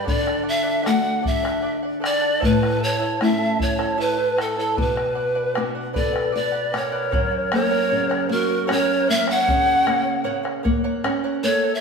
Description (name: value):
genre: andean folk, Andean ensemble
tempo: 77 BPM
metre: 3/4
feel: straight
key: unclear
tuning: A4 = 440 Hz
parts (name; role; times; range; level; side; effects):
- breathy polished pan flute; melody; 0.0-11.8 s; A4 to F#5; -22 LUFS; equal; none
- charango; accompaniment; 0.0-11.8 s; E4 to A5; -29 LUFS; right 3 dB; none
- nylon-string guitar; accompaniment; 0.0-11.8 s; F#2 to F#5; -24 LUFS; left 1 dB; none
- bombo; percussion; 0.1-11.2 s; none; -28 LUFS; left 1 dB; none
- large quena; second line; 6.0-11.8 s; F#4 to C#5; -28 LUFS; left 2 dB; none
room: wet stone room reverb, RT60 1.4 s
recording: band playing live in one room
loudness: -19 LUFS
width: side -5 dB against mid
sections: 0.0-7.1 A section; 7.1-11.8 B section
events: nylon-string guitar fill 5.6-7.1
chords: 0.1 D; 2.4 A; 4.8 Bm; 7.1 F#